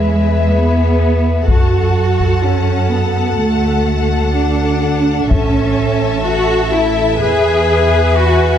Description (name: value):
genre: cinematic, epic orchestral film score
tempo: 126 BPM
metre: 4/4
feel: straight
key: A major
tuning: A4 = 440 Hz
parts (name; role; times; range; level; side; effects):
- warm symphonic violin section; melody; 0.0-8.6 s; E5 to A5; -25 LUFS; left 6 dB; none
- rich symphonic violin section; second line; 0.0-8.6 s; B4 to F#5; -23 LUFS; left 6 dB; none
- rich symphonic viola section; accompaniment; 0.0-8.6 s; G#4 to B4; -22 LUFS; right 2 dB; none
- mellow French horn section; sustained chords; 0.0-8.6 s; F#4 to E5; -21 LUFS; left 6 dB; none
- clear symphonic double bass section; bass; 0.0-8.6 s; A1 to F#2; -16 LUFS; right 2 dB; none
- warm symphonic cello section; bass; 0.0-8.6 s; G#3 to G#4; -17 LUFS; right 1 dB; none
- taiko ensemble; drums; 1.5-2.4, 5.3-6.2 s; none; -17 LUFS; left 1 dB; none
room: moderate concert hall reverb, RT60 1.9 s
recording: none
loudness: -12 LUFS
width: side -9 dB against mid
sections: 0.0-8.6 A section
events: none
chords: 0.0 E; 1.5 F#m; 3.4 D; 5.3 A; 7.2 E